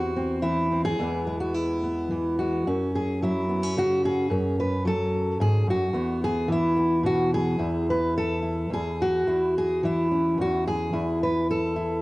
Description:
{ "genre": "folk, solo fingerstyle acoustic guitar", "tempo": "109 BPM", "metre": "3/4", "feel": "rubato", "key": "unclear", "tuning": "A4 = 443 Hz", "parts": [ { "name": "fingerpicked steel-string acoustic guitar", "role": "solo", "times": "0.0-12.0 s", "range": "E2 to B4", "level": "-22 LUFS", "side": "equal", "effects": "cassette tape" } ], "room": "moderate spring reverb, RT60 1.9 s, studio ambience", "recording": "home recording on cassette", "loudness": "-22 LUFS", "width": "side -20 dB against mid", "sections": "0.0-2.7 A section; 2.7-12.0 B section", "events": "none", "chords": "0.0 C/E; 1.0 E; 2.7 F#madd9; 5.9 E; 9.3 C#m/E", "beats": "0.43 | 0.98 1.54 2.10 | 2.67 3.22 3.77 | 4.31 4.86 5.40 | 5.94 6.49 7.04 | 7.59 8.15 8.70 | 9.27 9.83 10.38 | 10.94 11.48" }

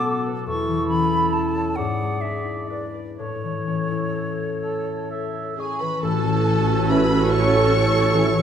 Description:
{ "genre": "classical, slow romantic movement for symphony orchestra", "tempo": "41-49 BPM (dotted quarters)", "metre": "6/8", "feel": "rubato", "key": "A major", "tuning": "A4 = 439 Hz", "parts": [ { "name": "bright silver concert flute", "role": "second line", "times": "0.0-8.4 s", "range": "C#5 to E6", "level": "-28 LUFS", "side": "equal", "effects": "none" }, { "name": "mellow cor anglais", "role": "second line", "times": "0.0-8.4 s", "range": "A4 to E5", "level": "-29 LUFS", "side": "right 4 dB", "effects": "none" }, { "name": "warm clarinet", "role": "second line", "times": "0.0-8.4 s", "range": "B3 to C#5", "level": "-28 LUFS", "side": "equal", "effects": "none" }, { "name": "concert harp", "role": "arpeggios", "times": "0.0-8.4 s", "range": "E2 to E5", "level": "-26 LUFS", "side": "left 6 dB", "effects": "none" }, { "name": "warm studio violin section", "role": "melody", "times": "5.6-8.4 s", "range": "G#5 to C#6", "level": "-27 LUFS", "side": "equal", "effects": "none" }, { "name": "warm studio violin section", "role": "second line", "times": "5.6-8.4 s", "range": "G#4 to C#5", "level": "-28 LUFS", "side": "left 1 dB", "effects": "none" }, { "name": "rich studio viola section", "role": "accompaniment", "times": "6.0-8.4 s", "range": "C#4 to F#4", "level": "-25 LUFS", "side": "right 3 dB", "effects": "none" }, { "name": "mellow tuba", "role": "bass", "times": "6.0-8.4 s", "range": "A1", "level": "-25 LUFS", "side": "right 4 dB", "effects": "none" }, { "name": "warm studio double bass section", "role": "bass", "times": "6.0-8.4 s", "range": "A1", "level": "-24 LUFS", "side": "right 3 dB", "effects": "none" }, { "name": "warm French horn section", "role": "sustained chords", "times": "6.9-8.3 s", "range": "C#4 to E4", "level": "-27 LUFS", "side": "left 1 dB", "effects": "none" }, { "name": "warm trombone section", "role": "sustained chords", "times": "6.9-8.3 s", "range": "E3 to A3", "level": "-30 LUFS", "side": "right 7 dB", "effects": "none" }, { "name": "warm studio cello section", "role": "bass", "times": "7.3-8.4 s", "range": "A4", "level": "-26 LUFS", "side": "right 4 dB", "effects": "none" } ], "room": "wet scoring stage reverb, RT60 1.8 s", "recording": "none", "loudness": "-19 LUFS", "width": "side -8 dB against mid", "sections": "0.0-6.0 A section; 6.0-8.4 A section", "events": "none", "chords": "0.5 A/E; 1.8 E7/G#; 3.2 A", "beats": "| 0.48 1.78 | 3.19 4.62 | 6.04 7.32" }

